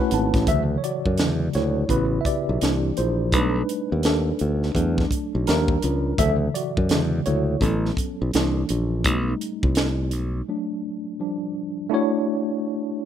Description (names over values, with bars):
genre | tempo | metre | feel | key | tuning
R&B, neo-soul | 84 BPM | 4/4 | swing 63% on 16ths | unclear | A4 = 440 Hz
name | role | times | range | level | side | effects
tine electric piano | accompaniment | 0.0-13.1 s | C#3 to A5 | -24 LUFS | equal | overdrive, fast stereo tremolo
modern bright fingered electric bass | bass | 0.1-10.4 s | G#1 to F#2 | -22 LUFS | equal | none
tight funk drum kit | drums | 0.1-10.3 s | hi-hat, kick drum, snare drum | -25 LUFS | right 1 dB | none
room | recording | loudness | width
small room ambience | rough home demo mix | -20 LUFS | side -9 dB against mid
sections
0.5-11.9 A section; 11.9-13.1 B section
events
tine electric piano fill 0.0-0.5; tine electric piano solo 0.5-11.9; break 10.5-11.9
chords
0.5 Dmaj9; 1.2 E13; 1.9 A69; 2.6 C9; 3.3 B7alt; 4.8 E9sus4; 5.5 D#maj9; 6.2 Dmaj9; 6.9 E13; 7.6 A69; 8.3 C9; 9.0 Baug7; 10.5 Dmaj7/F#; 11.2 Dmadd11/F; 11.9 Dmaj9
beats
| 0.47 1.19 1.90 2.61 | 3.33 4.04 4.76 5.47 | 6.19 6.90 7.61 8.33 | 9.04 9.76 10.47 11.19 | 11.90 12.61